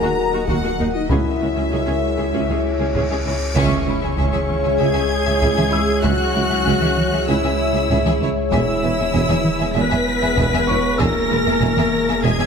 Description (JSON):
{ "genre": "cinematic, hybrid orchestral and electronic film score", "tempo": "97 BPM", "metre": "4/4", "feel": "straight", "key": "C# dorian", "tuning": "A4 = 439 Hz", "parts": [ { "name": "rich symphonic violin section", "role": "melody", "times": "0.0-12.5 s", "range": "A#4 to B6", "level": "-27 LUFS", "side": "left 2 dB", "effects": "none" }, { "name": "clear symphonic violin section", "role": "second line", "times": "0.0-12.5 s", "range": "E4 to A#5", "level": "-27 LUFS", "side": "left 2 dB", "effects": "none" }, { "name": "rich symphonic viola section", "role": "accompaniment", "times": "0.0-12.5 s", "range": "A#3 to B4", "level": "-24 LUFS", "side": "equal", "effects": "none" }, { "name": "dark French horn section", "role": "sustained chords", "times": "0.0-12.5 s", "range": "C#3 to A#4", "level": "-26 LUFS", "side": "left 3 dB", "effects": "none" }, { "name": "glassy FM pad", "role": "sustained chords", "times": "0.0-12.5 s", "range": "F#3 to D#5", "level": "-23 LUFS", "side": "left 1 dB", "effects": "ensemble chorus, built-in reverb" }, { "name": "punchy sub bass", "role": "bass", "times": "0.0-12.5 s", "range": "D#1 to C#2", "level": "-27 LUFS", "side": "equal", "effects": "none" }, { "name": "rich symphonic cello section", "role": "bass", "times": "0.0-12.5 s", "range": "C#2 to E2", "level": "-26 LUFS", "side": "right 2 dB", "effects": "none" }, { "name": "felt-muted upright piano", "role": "texture", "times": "0.0-12.5 s", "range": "G#4 to E6", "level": "-32 LUFS", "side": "left 2 dB", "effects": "digital delay" }, { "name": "mellow tuba", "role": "bass", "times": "0.5-12.3 s", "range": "E1 to D#2", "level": "-27 LUFS", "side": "right 4 dB", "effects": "none" }, { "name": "rich symphonic double bass section", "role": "bass", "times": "0.5-12.3 s", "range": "E1 to D#2", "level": "-27 LUFS", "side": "right 4 dB", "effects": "none" }, { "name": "taiko ensemble", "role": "drums", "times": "0.5-12.2 s", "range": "none", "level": "-25 LUFS", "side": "equal", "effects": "none" }, { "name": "cymbal swell and impact", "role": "sound effects", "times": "2.4-6.0 s", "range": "none", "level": "-30 LUFS", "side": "left 1 dB", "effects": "none" } ], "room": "wet scoring stage reverb, RT60 1.9 s", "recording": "none", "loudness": "-16 LUFS", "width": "side -6 dB against mid", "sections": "0.0-3.6 A section; 3.6-12.5 A section", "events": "cymbal swell 2.4-3.6; band accent 3.6-4.2; impact 3.6-6.0", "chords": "0.0 D#m; 1.1 C#m; 8.5 E" }